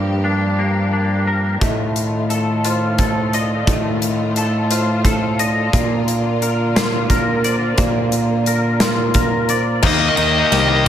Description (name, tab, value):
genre	post-rock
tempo	58 BPM (dotted quarters)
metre	6/8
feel	straight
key	unclear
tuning	A4 = 438 Hz
part	clear studio string section	sustained chords	0.0-10.9 s	D3 to G4	-27 LUFS	equal	none
part	twangy electric guitar	arpeggios	0.0-10.9 s	G2 to Eb5	-22 LUFS	left 2 dB	ensemble chorus, tape echo
part	growling fingered electric bass	bass	0.0-10.9 s	C2 to Bb2	-19 LUFS	equal	overdrive
part	vibraphone with soft mallets	arpeggios	1.6-10.9 s	Bb4 to Eb5	-26 LUFS	right 6 dB	tape echo
part	big rock drum kit	drums	1.6-10.7 s	crash cymbal, hi-hat, kick drum, ride cymbal, snare drum	-20 LUFS	equal	none
part	tight distorted guitar	riff	9.8-10.9 s	Eb3 to Eb4	-17 LUFS	left 10 dB	distortion
part	dark smooth lead guitar	melody	9.9-10.8 s	Eb5	-17 LUFS	right 2 dB	overdrive, tape echo
room	light reverb, studio reverb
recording	none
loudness	-15 LUFS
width	side -10 dB against mid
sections	0.0-9.8 A section; 9.8-10.9 B section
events	build-up 9.8-10.9; drum fill 9.8-10.9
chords	0.0 Gm7; 1.6 F7/A; 5.7 Bb; 9.8 Eb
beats	0.59 | 1.62 2.65 | 3.68 4.71 | 5.74 6.76 | 7.79 8.82 | 9.84 10.87